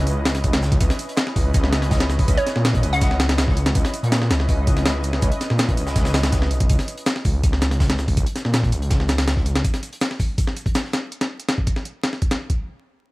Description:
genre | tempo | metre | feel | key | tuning
drum and bass, jungle | 163 BPM | 4/4 | straight | C# dorian | A4 = 442 Hz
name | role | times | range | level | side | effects
lush unison pad | sustained chords | 0.0-6.7 s | C#4 to D#5 | -29 LUFS | equal | chorus, vintage 12-bit sampler grit
detuned saw bass | bass | 0.0-9.6 s | B1 to A#2 | -21 LUFS | equal | none
breakbeat sampler-style drum kit | drums | 0.1-12.6 s | hi-hat, kick drum, snare drum | -20 LUFS | equal | none
crunchy breakbeat drum kit | drums | 0.1-11.0 s | hi-hat, shaker, snare drum | -35 LUFS | equal | high-pass filter on hats, high-pass filter on snare, high-pass filter on perc, high-pass filter on room
hollow square pluck | melody | 2.4-3.3 s | C#5 to F#5 | -27 LUFS | right 1 dB | chorus, cassette tape, dub echo
room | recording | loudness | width
little or no reverb | vinyl crackle | -18 LUFS | side -21 dB against mid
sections
0.0-6.7 A section; 6.7-12.6 B section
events
drop 0.0-6.7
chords
0.0 C#m9; 6.7 N.C.

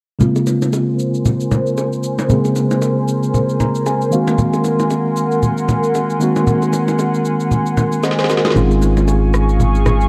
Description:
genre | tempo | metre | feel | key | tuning
amapiano | 115 BPM | 4/4 | swing 58% on 16ths | Bb minor | A4 = 439 Hz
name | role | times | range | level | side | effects
tine electric piano | accompaniment | 0.2-10.1 s | Db3 to Bb5 | -19 LUFS | equal | low-pass filter
airy breathy pad | sustained chords | 1.0-10.1 s | Ab4 to Db6 | -24 LUFS | equal | chorus, low-pass filter
electronic shaker, snare drum and rim click | drums | 0.2-10.1 s | none | -30 LUFS | equal | none
congas and bongos | percussion | 0.2-10.0 s | none | -22 LUFS | equal | none
warm sub bass | bass | 8.6-10.1 s | Ab1 | -17 LUFS | equal | none
room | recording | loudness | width
light reverb | worn, warbling old tape, cassette tape, warbly pitch drift | -16 LUFS | mono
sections
0.2-10.1 A section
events
filter sweep 0.2-10.1; tine electric piano fill 3.3-4.4; drum fill 8.0-8.6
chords
0.2 Bbm9; 4.1 Ab9; 8.6 Dbmaj7/Ab

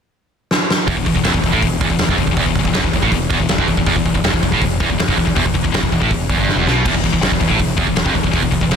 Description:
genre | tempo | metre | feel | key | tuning
heavy metal | 161 BPM | 4/4 | straight | E phrygian | A4 = 441 Hz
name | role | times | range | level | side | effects
big rock drum kit | drums | 0.5-8.8 s | crash cymbal, hi-hat, kick drum, snare drum | -18 LUFS | equal | none
distorted electric guitar | riff | 0.9-8.8 s | E2 to B2 | -20 LUFS | right 12 dB | overdrive
heavy high-gain guitar | riff | 0.9-8.8 s | E2 to B2 | -20 LUFS | left 10 dB | distortion
growling fingered electric bass | bass | 0.9-8.8 s | E1 to B1 | -22 LUFS | equal | overdrive
room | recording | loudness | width
small room ambience | dense, heavily limited modern master | -14 LUFS | side -7 dB against mid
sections
0.9-8.8 A section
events
drum fill 0.5-0.9, 6.5-6.9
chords
none

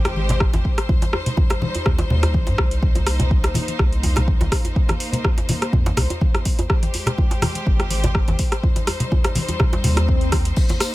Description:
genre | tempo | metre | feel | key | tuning
afro house | 124 BPM | 4/4 | swing 54% on 16ths | unclear | A4 = 440 Hz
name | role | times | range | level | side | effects
rich symphonic string section | sustained chords | 0.0-10.9 s | G3 to C5 | -28 LUFS | left 2 dB | sidechain pumping
round analog bass | bass | 0.0-10.5 s | Ab1 to G2 | -21 LUFS | equal | sidechain pumping
djembe | percussion | 0.0-10.8 s | none | -29 LUFS | right 2 dB | none
deep house drum kit | drums | 0.1-10.9 s | crash cymbal, hi-hat, rim click | -25 LUFS | equal | none
congas | percussion | 0.2-10.8 s | none | -25 LUFS | left 1 dB | none
electronic kick drum | drums | 0.4-10.7 s | none | -19 LUFS | equal | none
swell | sound effects | 9.8-10.6 s | none | -31 LUFS | left 5 dB | none
tambourine | percussion | 10.6-10.9 s | none | -30 LUFS | left 6 dB | none
room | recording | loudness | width
little or no reverb | none | -17 LUFS | side -18 dB against mid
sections
0.0-10.9 A section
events
swell 9.8-10.6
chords
0.0 Abmaj7; 0.9 Eb6; 2.8 Cm7; 6.7 Abmaj7; 8.6 Eb6

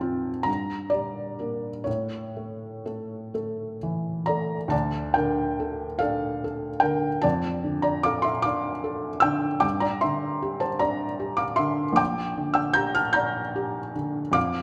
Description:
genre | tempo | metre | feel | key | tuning
classical, romantic nocturne for solo piano | 40-52 BPM (dotted quarters) | 6/8 | rubato | D minor | A4 = 442 Hz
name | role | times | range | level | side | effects
felt-muted upright piano | solo | 0.0-14.6 s | Bb1 to G6 | -26 LUFS | equal | none
room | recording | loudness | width
wet recital hall reverb, RT60 1.5 s | none | -26 LUFS | mono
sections
0.0-4.7 A section; 4.7-14.6 B section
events
none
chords
0.5 Gm; 1.9 A; 4.7 Dm; 7.2 Dm/F; 9.6 G5; 12.0 Gm/Bb

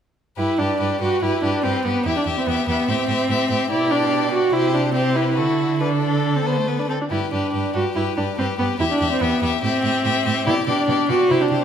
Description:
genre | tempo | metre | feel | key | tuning
quick classical-period movement for string quartet | 144 BPM | 4/4 | straight | G major | A4 = 438 Hz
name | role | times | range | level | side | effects
clear violin | melody | 0.4-11.6 s | A4 to E5 | -26 LUFS | left 9 dB | none
rich violin | second line | 0.4-11.6 s | F#4 to C5 | -27 LUFS | left 4 dB | none
warm viola | accompaniment | 0.4-11.6 s | A3 to F#4 | -20 LUFS | right 1 dB | none
rich cello | bass | 0.4-11.6 s | E2 to D3 | -25 LUFS | right 4 dB | none
room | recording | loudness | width
wet scoring stage reverb, RT60 1.7 s | none | -18 LUFS | side -8 dB against mid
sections
0.4-11.6 A section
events
none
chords
0.4 G; 2.1 Em; 2.9 Am7; 3.7 G/B; 4.5 C5; 5.4 D; 7.1 G; 8.8 Em; 9.6 Am7; 10.5 G/B

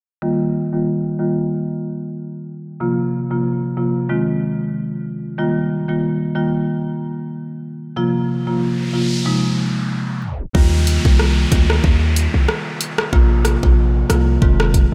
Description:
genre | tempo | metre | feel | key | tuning
dancehall | 93 BPM | 4/4 | swing 56% on 16ths | Eb major | A4 = 441 Hz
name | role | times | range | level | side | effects
marimba with medium mallets | accompaniment | 0.2-14.9 s | C3 to F4 | -22 LUFS | equal | low-pass filter
noise sweep and downlifter | sound effects | 8.5-14.9 s | none | -29 LUFS | equal | none
hard-hitting 808-style bass | bass | 10.5-14.9 s | F1 to Eb2 | -18 LUFS | equal | none
pop drum kit | drums | 10.5-14.9 s | hi-hat, kick drum, rim click | -19 LUFS | equal | overdrive
room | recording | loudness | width
light reverb | tape stop | -18 LUFS | mono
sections
0.2-10.5 A section; 10.5-14.9 B section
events
filter sweep on marimba 0.2-10.5; noise sweep 8.5-10.5; tape stop 10.2-10.5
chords
0.2 Ebadd9; 2.8 Bbsus2; 4.1 Fm7; 5.4 Ebadd9; 8.0 Bbsus2; 9.3 Fm7; 10.5 Ebadd9; 13.1 Bbsus2; 14.4 Fm7

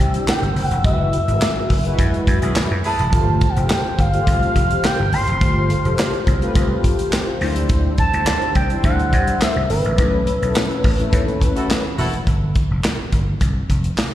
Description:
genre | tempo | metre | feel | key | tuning
early-eighties boogie funk | 105 BPM | 4/4 | straight | unclear | A4 = 440 Hz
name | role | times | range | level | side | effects
mellow synth brass | accompaniment | 0.0-11.9 s | F#3 to G5 | -24 LUFS | left 2 dB | chorus, slapback echo
breathy large flute ensemble | sustained chords | 0.0-12.2 s | B4 to F6 | -31 LUFS | equal | none
vintage slap bass | bass | 0.0-13.9 s | E1 to G2 | -20 LUFS | equal | none
modern studio drum kit | drums | 0.0-14.1 s | handclaps, hi-hat, kick drum, snare drum | -20 LUFS | equal | none
expressive synth lead | melody | 0.3-11.7 s | B4 to C6 | -23 LUFS | equal | chorus, slapback echo, tape echo
warm horn section | second line | 2.4-3.0, 11.6-12.2 s | C#4 to B4 | -28 LUFS | right 1 dB | slapback echo
room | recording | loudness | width
studio reverb | live gig heard through the venue's PA, recital hall reverb | -16 LUFS | side -13 dB against mid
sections
0.0-12.3 A section; 12.3-14.1 B section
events
band accent 0.8-3.1, 10.0-12.3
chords
0.0 D9sus4; 0.8 F#9sus4; 3.1 G9sus4; 7.4 D9sus4; 10.0 B9sus4; 12.3 G7sus4

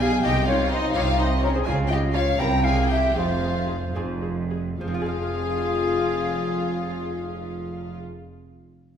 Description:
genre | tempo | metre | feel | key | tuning
classical, baroque-style concerto movement with solo episodes | 68-85 BPM (dotted quarters) | 6/8 | straight | F minor | A4 = 440 Hz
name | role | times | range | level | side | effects
rich chamber violin section | melody | 0.0-8.0 s | C5 to Bb5 | -31 LUFS | left 4 dB | none
silver concert flute | melody | 0.0-8.0 s | Ab4 to G5 | -27 LUFS | left 3 dB | none
warm chamber violin section | second line | 0.0-8.0 s | C4 to Bb4 | -31 LUFS | left 3 dB | none
lute | accompaniment | 0.0-8.2 s | F2 to F5 | -35 LUFS | equal | none
rich studio viola section | accompaniment | 0.0-8.0 s | Eb4 to Ab4 | -32 LUFS | left 1 dB | none
rich chamber double bass section | bass | 0.0-8.0 s | F1 to Db2 | -27 LUFS | right 2 dB | none
rich studio cello section | bass | 0.0-8.0 s | F2 to Db3 | -29 LUFS | right 2 dB | none
room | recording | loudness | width
wet recital hall reverb, RT60 1.8 s | heard from further back in the room | -21 LUFS | side -8 dB against mid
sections
0.0-4.8 A section; 4.8-8.3 B section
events
slowing down 0.9-4.8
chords
0.2 Cm; 1.7 Db; 2.4 C; 3.1 Fm

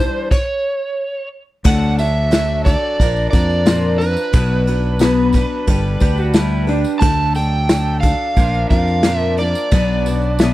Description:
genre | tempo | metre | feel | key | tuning
folk rock and heartland rock | 89 BPM | 4/4 | straight | D major | A4 = 440 Hz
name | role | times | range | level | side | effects
overdriven slide guitar | melody | 0.0-10.5 s | B4 to A5 | -21 LUFS | right 2 dB | slapback echo
picked steel-string acoustic guitar | accompaniment | 0.0-10.5 s | Bb2 to C5 | -21 LUFS | left 5 dB | none
accordion | sustained chords | 0.0-10.5 s | E3 to Bb5 | -30 LUFS | right 2 dB | none
fingered electric bass | bass | 0.0-10.5 s | G1 to F2 | -18 LUFS | equal | none
soft brush drum kit | drums | 0.3-10.5 s | crash cymbal, kick drum, snare drum | -16 LUFS | equal | none
tambourine | percussion | 1.6-10.5 s | none | -38 LUFS | right 7 dB | none
electric guitar through a small old amp | second line | 5.0-10.5 s | D4 to E5 | -23 LUFS | right 3 dB | spring reverb
room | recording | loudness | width
little or no reverb | dry, close 1970s-style studio recording | -14 LUFS | side -16 dB against mid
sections
0.0-1.7 A section; 1.7-10.5 B section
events
stop 0.3-1.7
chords
0.3 N.C.; 1.7 D; 3.0 Bb; 4.3 Bm; 5.7 G; 7.0 D; 8.4 Bb; 9.7 Bm

